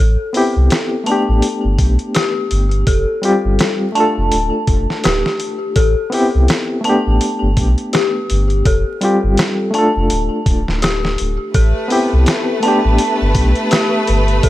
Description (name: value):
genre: trip hop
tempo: 83 BPM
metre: 4/4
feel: swing 57% on 16ths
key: A minor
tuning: A4 = 441 Hz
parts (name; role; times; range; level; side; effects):
- dark detuned synth bell; arpeggios; 0.0-14.5 s; G4 to A5; -21 LUFS; left 1 dB; chorus, phaser, digital delay
- soft dub sub bass; bass; 0.0-14.5 s; D1 to C2; -15 LUFS; equal; none
- barky reed electric piano; accompaniment; 0.3-14.4 s; G3 to A4; -18 LUFS; left 1 dB; fast tremolo, tape echo
- dusty soul sampler-style drum kit; drums; 0.3-14.5 s; hi-hat, kick drum, snare drum; -18 LUFS; equal; small room reverb
- rich studio violin section; sustained chords; 11.5-14.5 s; A3 to B4; -20 LUFS; equal; none
room: little or no reverb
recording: vinyl crackle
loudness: -13 LUFS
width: side -15 dB against mid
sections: 0.0-14.5 A section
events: none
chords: 0.0 Am7; 1.4 Gadd9; 2.9 Fsus2; 4.3 Dm; 5.8 Am7; 7.2 Gadd9; 8.7 Fsus2; 10.1 Dm; 11.5 Am7; 13.0 Gadd9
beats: 0.70 1.43 2.15 | 2.87 3.60 4.32 5.04 | 5.76 6.49 7.21 7.93 | 8.66 9.38 10.10 10.82 | 11.55 12.27 12.99 13.72 | 14.44